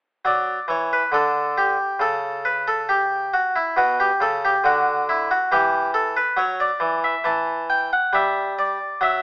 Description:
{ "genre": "classical, baroque-style suite movement for harpsichord", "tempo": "68 BPM", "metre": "4/4", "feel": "rubato", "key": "D major", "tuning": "A4 = 440 Hz", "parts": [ { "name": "harpsichord", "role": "solo", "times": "0.2-9.2 s", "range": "B2 to A5", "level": "-18 LUFS", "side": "equal", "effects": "none" } ], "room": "moderate stone room reverb, RT60 1.3 s", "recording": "telephone sound", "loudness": "-18 LUFS", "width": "side -23 dB against mid", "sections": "0.3-9.2 A section", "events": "none", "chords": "0.3 D; 2.0 N.C.; 3.8 Bm; 5.5 Em13; 7.3 Em11" }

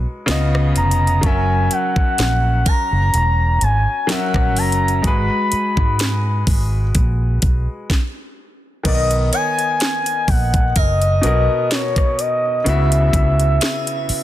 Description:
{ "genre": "contemporary R&B", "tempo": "63 BPM", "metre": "4/4", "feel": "swing 54% on 16ths", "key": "unclear", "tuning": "A4 = 440 Hz", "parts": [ { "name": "clear baby grand piano", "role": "accompaniment", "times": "0.0-14.2 s", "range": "B2 to E5", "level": "-24 LUFS", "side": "left 2 dB", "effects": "none" }, { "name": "vintage muted fingered electric bass", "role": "bass", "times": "0.0-14.1 s", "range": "E1 to G#2", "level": "-18 LUFS", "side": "equal", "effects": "none" }, { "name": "harpsichord", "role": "texture", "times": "0.0-14.2 s", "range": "G#4 to C#5", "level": "-31 LUFS", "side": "right 1 dB", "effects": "ping-pong delay" }, { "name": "trap drum kit", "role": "drums", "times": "0.3-14.2 s", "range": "crash cymbal, hi-hat, kick drum, rim click, snare drum", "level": "-19 LUFS", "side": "equal", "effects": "none" }, { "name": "gliding portamento lead", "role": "melody", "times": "0.8-14.2 s", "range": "C#5 to B5", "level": "-20 LUFS", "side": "equal", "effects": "chorus, ping-pong delay" } ], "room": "little or no reverb", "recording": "dense, heavily limited modern master", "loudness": "-15 LUFS", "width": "side -13 dB against mid", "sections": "0.0-8.9 A section; 8.9-14.2 B section", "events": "stop 7.9-8.9", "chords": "0.3 C#9; 1.2 F#7; 5.0 G#m9; 7.9 N.C.; 8.9 Bmaj7; 12.7 C#m7" }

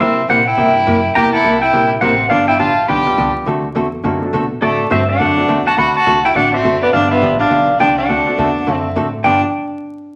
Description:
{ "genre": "country, western swing", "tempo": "208 BPM", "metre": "4/4", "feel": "swing 62% on 8ths", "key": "G major", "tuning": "A4 = 438 Hz", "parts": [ { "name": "pedal steel guitar", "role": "melody", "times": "0.0-9.4 s", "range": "A4 to B5", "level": "-17 LUFS", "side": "equal", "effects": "none" }, { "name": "clear fiddle", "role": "second line", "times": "0.0-9.4 s", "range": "A3 to G4", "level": "-21 LUFS", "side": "equal", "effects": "none" }, { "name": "hollow-body jazz guitar", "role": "accompaniment", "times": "0.0-9.4 s", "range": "G2 to A4", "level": "-21 LUFS", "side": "equal", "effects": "none" }, { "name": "upright bass", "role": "bass", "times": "0.0-9.4 s", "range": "F#1 to C3", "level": "-27 LUFS", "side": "equal", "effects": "none" }, { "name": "clear upright piano", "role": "accompaniment", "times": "0.6-9.4 s", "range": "G3 to Bb4", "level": "-28 LUFS", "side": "equal", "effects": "none" } ], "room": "wet studio reverb, RT60 0.9 s", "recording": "vinyl crackle", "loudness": "-14 LUFS", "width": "mono", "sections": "0.0-9.2 A section", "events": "none", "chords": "0.0 C7; 2.3 G7; 3.5 D7; 6.9 G7; 8.1 D7; 9.2 G7" }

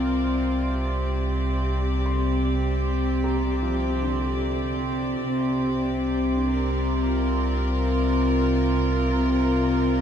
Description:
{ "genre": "ambient", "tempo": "77 BPM", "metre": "4/4", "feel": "straight", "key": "unclear", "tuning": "A4 = 438 Hz", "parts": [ { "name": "rich chamber string section", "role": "sustained chords", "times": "0.0-10.0 s", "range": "C3 to D5", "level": "-23 LUFS", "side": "equal", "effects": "none" }, { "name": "felt-muted upright piano", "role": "arpeggios", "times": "0.0-10.0 s", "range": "D3 to C6", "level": "-38 LUFS", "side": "equal", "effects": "none" }, { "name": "warm sub bass", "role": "bass", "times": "0.0-10.0 s", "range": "C2", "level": "-26 LUFS", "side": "equal", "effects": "none" }, { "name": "glass harmonica", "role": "texture", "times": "0.0-10.0 s", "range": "C6", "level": "-36 LUFS", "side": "right 8 dB", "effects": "stereo widening" } ], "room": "wet cathedral reverb, RT60 6.3 s", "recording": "dark, warm production", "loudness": "-22 LUFS", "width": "side -8 dB against mid", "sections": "0.0-10.0 A section", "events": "none", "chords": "0.0 Bbadd9/C" }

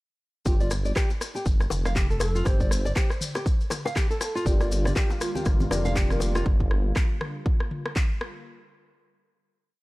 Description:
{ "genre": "afro house", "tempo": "120 BPM", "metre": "4/4", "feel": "swing 58% on 16ths", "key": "G minor", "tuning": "A4 = 440 Hz", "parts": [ { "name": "breathy bass bansuri", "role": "melody", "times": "0.5-5.4 s", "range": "F4 to C5", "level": "-36 LUFS", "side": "equal", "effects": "tape echo" }, { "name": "nylon-string guitar", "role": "arpeggios", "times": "0.5-6.4 s", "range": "F4 to F5", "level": "-33 LUFS", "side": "equal", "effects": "sidechain pumping, tape echo" }, { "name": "dark detuned saw bass", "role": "bass", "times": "0.5-6.9 s", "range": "F1 to G1", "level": "-26 LUFS", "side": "equal", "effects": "sidechain pumping" }, { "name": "electronic kick drum", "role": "drums", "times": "0.5-8.1 s", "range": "none", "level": "-24 LUFS", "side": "equal", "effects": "studio reverb" }, { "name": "bongos", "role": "percussion", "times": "0.5-6.4 s", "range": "none", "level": "-35 LUFS", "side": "left 4 dB", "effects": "none" }, { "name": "maracas", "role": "percussion", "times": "0.5-6.4 s", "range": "none", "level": "-37 LUFS", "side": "left 4 dB", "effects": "none" }, { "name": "afro-pop drum kit", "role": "drums", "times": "0.7-8.3 s", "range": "handclaps, rim click, toms", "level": "-33 LUFS", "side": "left 1 dB", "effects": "studio reverb" }, { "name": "warm analog pad", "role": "sustained chords", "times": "4.5-8.4 s", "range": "D3 to F4", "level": "-37 LUFS", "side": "equal", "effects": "chorus, sidechain pumping" }, { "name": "felt-muted upright piano", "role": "stabs", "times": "4.5-6.4 s", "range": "D4 to D5", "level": "-34 LUFS", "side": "left 2 dB", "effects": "sidechain pumping, tape echo" }, { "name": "congas", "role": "percussion", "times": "4.5-6.4 s", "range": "none", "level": "-36 LUFS", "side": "right 1 dB", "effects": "none" } ], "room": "small room ambience", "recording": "dry, gritty hardware recording", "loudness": "-23 LUFS", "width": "side -20 dB against mid", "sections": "0.5-8.5 drop", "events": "drop 0.5-8.5", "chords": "0.5 N.C.; 4.5 Gm7" }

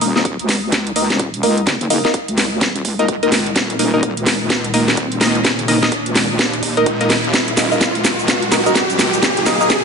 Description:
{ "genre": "bass house", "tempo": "127 BPM", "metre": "4/4", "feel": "swing 61% on 16ths", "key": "Eb minor", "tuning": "A4 = 441 Hz", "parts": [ { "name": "dark analog pad", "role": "sustained chords", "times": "0.0-9.8 s", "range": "Bb3 to Bb4", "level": "-27 LUFS", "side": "right 1 dB", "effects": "chorus, phaser, sidechain pumping" }, { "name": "band-passed chord stab", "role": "stabs", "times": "0.0-9.7 s", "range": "Bb3 to Eb5", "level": "-19 LUFS", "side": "left 1 dB", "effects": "phaser, cassette tape, sidechain pumping, dub echo" }, { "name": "wobble bass", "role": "bass", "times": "0.0-9.6 s", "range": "Eb1 to Eb2", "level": "-22 LUFS", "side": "equal", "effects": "chorus, tube saturation, sidechain pumping, high-pass filter" }, { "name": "house drum kit", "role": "drums", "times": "0.0-9.8 s", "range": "cabasa, hi-hat, snare drum", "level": "-17 LUFS", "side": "equal", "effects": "studio reverb" }, { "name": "riser", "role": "sound effects", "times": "2.3-9.8 s", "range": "none", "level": "-23 LUFS", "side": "equal", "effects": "none" }, { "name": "electronic kick drum", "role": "drums", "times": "0.2-9.8 s", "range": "none", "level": "-26 LUFS", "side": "equal", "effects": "high-pass filter on kick, studio reverb" } ], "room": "moderate digital room reverb, RT60 1.2 s", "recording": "nothing above 11.0 kHz", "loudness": "-14 LUFS", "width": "side -5 dB against mid", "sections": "0.0-9.8 A section", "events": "build-up 0.0-9.8; drum fill 0.0-9.8; filter sweep on analog synth pad 0.0-9.8; riser 2.3-9.8", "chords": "0.0 Eb5" }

